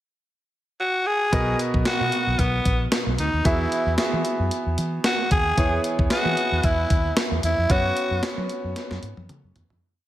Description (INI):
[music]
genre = 1980s-style pop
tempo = 113 BPM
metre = 4/4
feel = swing 55% on 16ths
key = B major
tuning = A4 = 440 Hz
[part]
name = breathy tenor saxophone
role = melody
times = 0.8-8.2 s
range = B3 to G#4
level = -24 LUFS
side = equal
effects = none
[part]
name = clear concert grand piano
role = accompaniment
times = 1.3-9.8 s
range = B2 to F#5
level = -27 LUFS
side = right 1 dB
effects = none
[part]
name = vintage muted fingered electric bass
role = bass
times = 1.3-9.8 s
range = A#1 to F#3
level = -26 LUFS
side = equal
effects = none
[part]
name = clean 12-bit digital drum machine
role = drums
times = 1.3-9.8 s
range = hi-hat, kick drum, snare drum, toms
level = -24 LUFS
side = equal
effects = gated reverb
[sound]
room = light reverb, digital ambience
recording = none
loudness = -20 LUFS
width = side -13 dB against mid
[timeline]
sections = 0.0-1.3 pickup bar; 1.3-9.8 verse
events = fade-out 7.7-9.8; drum fill 8.8-9.8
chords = 0.0 N.C.; 1.3 Bmaj7; 3.5 Eadd9; 5.6 C#m7/E; 7.7 F#sus4